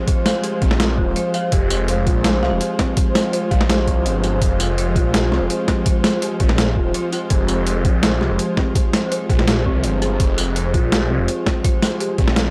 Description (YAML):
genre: half-time drum and bass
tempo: 166 BPM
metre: 4/4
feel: half-time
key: F minor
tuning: A4 = 441 Hz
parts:
  - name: dark studio string section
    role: sustained chords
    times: 0.0-12.5 s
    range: F3 to C5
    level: -25 LUFS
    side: equal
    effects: sidechain pumping
  - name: dark detuned synth bell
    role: arpeggios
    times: 0.0-12.5 s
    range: C4 to F5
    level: -28 LUFS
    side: equal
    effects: chorus, phaser, vintage 12-bit sampler grit, analog delay
  - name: boom bap sampler-style drum kit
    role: drums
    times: 0.1-12.4 s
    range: hi-hat, snare drum, tambourine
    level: -24 LUFS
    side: equal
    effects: overdrive
  - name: electronic kick drum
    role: drums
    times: 0.1-12.3 s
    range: none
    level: -21 LUFS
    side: equal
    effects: overdrive
  - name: phased detuned saw bass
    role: bass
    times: 0.6-12.5 s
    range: Eb1 to C2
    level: -23 LUFS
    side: equal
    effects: phaser
room: digital ambience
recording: dry, gritty hardware recording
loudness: -18 LUFS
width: mono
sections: 0.0-12.5 A section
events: none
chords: 0.0 Fm